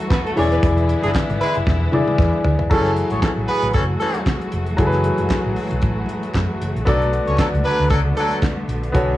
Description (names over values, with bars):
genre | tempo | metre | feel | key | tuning
disco | 115 BPM | 4/4 | swing 56% on 16ths | F# minor | A4 = 440 Hz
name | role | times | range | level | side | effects
clear baby grand piano | accompaniment | 0.0-9.2 s | E3 to D5 | -22 LUFS | left 2 dB | cassette tape
clear chamber string section | sustained chords | 0.0-9.2 s | D3 to G#5 | -27 LUFS | equal | cassette tape
congas | percussion | 0.0-8.8 s | none | -34 LUFS | left 5 dB | none
rich studio violin section | second line | 0.1-0.6 s | A3 to C#5 | -25 LUFS | right 2 dB | cassette tape
damped 70s drum kit | drums | 0.1-9.1 s | crash cymbal, handclaps, hi-hat, kick drum, snare drum, toms | -20 LUFS | equal | cassette tape
group handclap | percussion | 0.1-8.6 s | none | -39 LUFS | right 3 dB | none
hollow-body short-scale fingered electric bass | bass | 0.4-9.2 s | E1 to F#2 | -21 LUFS | equal | none
clear horn section | stabs | 1.0-8.4 s | E3 to C#5 | -21 LUFS | equal | cassette tape
room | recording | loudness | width
little or no reverb | home recording on cassette, small room ambience | -16 LUFS | side -15 dB against mid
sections
0.0-2.7 A section; 2.7-9.2 B section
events
drum fill 1.7-2.7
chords
0.4 E7; 2.7 F#m9; 6.9 Bm7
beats
0.11 | 0.63 1.15 1.67 2.19 | 2.71 3.23 3.75 4.27 | 4.79 5.31 5.83 6.35 | 6.87 7.39 7.91 8.43 | 8.95